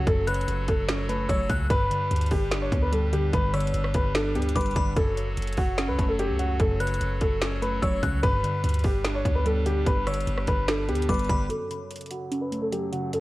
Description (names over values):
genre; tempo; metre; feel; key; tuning
hip hop, trap; 147 BPM; 4/4; half-time; F# phrygian; A4 = 440 Hz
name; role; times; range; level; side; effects
dark baby grand piano; melody; 0.0-13.2 s; F#4 to C#5; -29 LUFS; left 1 dB; low-pass filter
glassy digital keys; accompaniment; 0.0-13.2 s; F#2 to D4; -30 LUFS; equal; chorus, low-pass filter
pipe organ, clarinet reed; sustained chords; 0.0-13.2 s; F#2 to C#5; -38 LUFS; equal; low-pass filter
warm 808-style bass; bass; 0.0-11.5 s; F#1 to D2; -28 LUFS; equal; none
trap drum kit; drums; 0.1-13.2 s; finger snaps, hi-hat, kick drum, rim click, snare drum; -28 LUFS; equal; none
glassy synth bell; second line; 0.3-11.5 s; B5 to F#6; -35 LUFS; left 2 dB; chorus, ping-pong delay
room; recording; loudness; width
light reverb; worn, warbling old tape, cassette tape, warbly pitch drift; -23 LUFS; side -18 dB against mid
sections
0.0-11.5 A section; 11.5-13.2 B section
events
filter sweep 11.5-13.2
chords
0.0 F#m; 1.7 G; 5.0 F#m; 8.2 G; 11.5 F#m